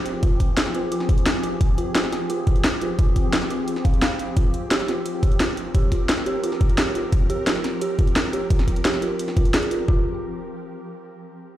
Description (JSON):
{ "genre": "dark technical drum and bass", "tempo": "174 BPM", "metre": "4/4", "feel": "straight", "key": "F minor", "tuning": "A4 = 440 Hz", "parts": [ { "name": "swarming drone", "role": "sustained chords", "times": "0.0-10.0 s", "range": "F3 to Bb4", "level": "-29 LUFS", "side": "equal", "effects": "built-in reverb, sidechain pumping" }, { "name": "drum and bass drum kit", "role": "drums", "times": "0.1-9.8 s", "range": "hi-hat, snare drum", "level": "-24 LUFS", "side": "equal", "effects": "overdrive" }, { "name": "dark detuned synth bell", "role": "arpeggios", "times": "0.2-10.0 s", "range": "F4 to F5", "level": "-27 LUFS", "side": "right 1 dB", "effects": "chorus, sidechain pumping, low-pass filter, digital delay" }, { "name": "electronic kick drum", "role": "drums", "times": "0.2-10.0 s", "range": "none", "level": "-19 LUFS", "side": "equal", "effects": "overdrive" } ], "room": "light reverb, digital ambience", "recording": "played on a big sound system in a bare room, stone room reverb", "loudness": "-19 LUFS", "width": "side -13 dB against mid", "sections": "0.0-9.9 A section; 9.9-11.3 B section", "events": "filter sweep on synth bell 0.0-9.9", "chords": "0.0 Fmadd9" }